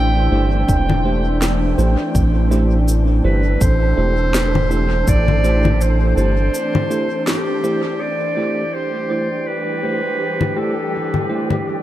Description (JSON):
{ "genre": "ambient dub", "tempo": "82 BPM", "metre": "4/4", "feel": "swing 57% on 16ths", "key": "A minor", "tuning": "A4 = 441 Hz", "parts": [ { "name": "warm clarinet", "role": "melody", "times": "0.0-11.7 s", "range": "G4 to G5", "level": "-22 LUFS", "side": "right 1 dB", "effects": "dub echo" }, { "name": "warm analog pad", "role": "sustained chords", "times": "0.0-11.8 s", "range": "E3 to G4", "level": "-24 LUFS", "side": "left 1 dB", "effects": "chorus, vintage 12-bit sampler grit" }, { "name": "soft dub sub bass", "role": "bass", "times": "0.0-6.5 s", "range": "E1 to A1", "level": "-16 LUFS", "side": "equal", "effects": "tube saturation" }, { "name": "wind-like tuned noise texture", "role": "texture", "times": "0.0-11.8 s", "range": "G3 to C5", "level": "-28 LUFS", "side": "equal", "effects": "built-in reverb" }, { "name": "mellow tine electric piano", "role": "stabs", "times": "0.3-11.5 s", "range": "A3 to C5", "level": "-25 LUFS", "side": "right 2 dB", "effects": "dub echo" }, { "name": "electronic cabasa, congas and snare drum", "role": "drums", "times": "0.7-11.6 s", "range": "none", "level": "-23 LUFS", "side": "left 2 dB", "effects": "dub echo" }, { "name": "electronic kick drum", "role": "drums", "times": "0.7-5.2 s", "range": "none", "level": "-18 LUFS", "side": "equal", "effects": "none" } ], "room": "light reverb, digital ambience", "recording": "none", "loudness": "-15 LUFS", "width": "side -13 dB against mid", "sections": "0.0-8.0 A section; 8.0-11.8 B section", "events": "break 6.5-8.0", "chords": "0.0 Am7" }